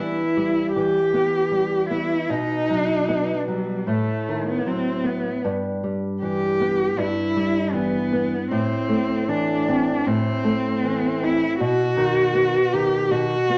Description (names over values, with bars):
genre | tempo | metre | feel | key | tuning
romantic duo for cello and classical guitar | 78 BPM | 4/4 | rubato | E minor | A4 = 440 Hz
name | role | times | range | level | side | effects
rich cello | melody | 0.0-13.6 s | G3 to G4 | -24 LUFS | equal | none
nylon-string guitar | accompaniment | 0.0-13.6 s | G2 to C4 | -26 LUFS | equal | none
room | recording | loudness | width
wet large studio reverb, RT60 1.2 s | none | -22 LUFS | mono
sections
0.0-13.6 A section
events
none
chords
0.0 Em; 2.3 B; 3.9 B7/A; 5.4 Em/G; 8.5 Amadd11; 11.6 B